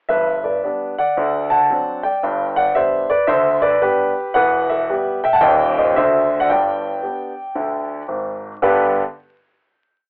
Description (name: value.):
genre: jazz, stride piano.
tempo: 113 BPM.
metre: 4/4.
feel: swing 64% on 8ths.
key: G major.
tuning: A4 = 439 Hz.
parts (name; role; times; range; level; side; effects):
warm concert grand piano; solo; 0.1-9.0 s; Eb1 to A5; -15 LUFS; equal; cassette tape.
room: moderate studio ambience, RT60 0.5 s.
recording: home recording on cassette, vinyl crackle, telephone sound.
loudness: -15 LUFS.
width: side -36 dB against mid.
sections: 0.1-8.6 A section; 8.6-10.1 final chord.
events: none.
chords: 0.1 G; 1.2 D7; 2.2 G; 4.4 Em; 5.4 Eb7; 6.0 D; 6.5 G.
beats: | 0.10 0.63 1.16 1.70 | 2.23 2.76 3.30 3.83 | 4.36 4.89 5.42 5.96 | 6.49 7.02 7.55 8.09 | 8.62.